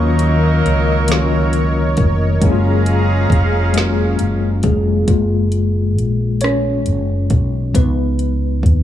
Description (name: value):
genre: slow six-eight R&B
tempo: 45 BPM (dotted quarters)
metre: 6/8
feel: straight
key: F# major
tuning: A4 = 442 Hz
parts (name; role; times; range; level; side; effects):
- mellow tine electric piano; accompaniment; 0.0-8.8 s; D#3 to C#5; -19 LUFS; left 3 dB; medium stereo tremolo
- warm analog pad; sustained chords; 0.0-5.1 s; G#4 to C#6; -22 LUFS; right 2 dB; chorus
- warm horn section; stabs; 0.0-4.6 s; E#3 to A#4; -24 LUFS; right 1 dB; none
- mellow fretless electric bass; bass; 0.0-8.8 s; E#1 to D#2; -16 LUFS; equal; none
- smooth R&B drum kit; drums; 0.2-8.8 s; hi-hat, kick drum, rim click, snare drum; -17 LUFS; equal; none
room: digital ambience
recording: small room ambience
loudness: -13 LUFS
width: side -11 dB against mid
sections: 0.0-5.1 A section; 5.1-8.8 B section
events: tine electric piano solo 5.1-8.8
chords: 0.0 D#m7; 2.4 F#maj9; 7.7 C#9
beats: 1.08 | 2.41 3.75 | 5.08 6.41 | 7.75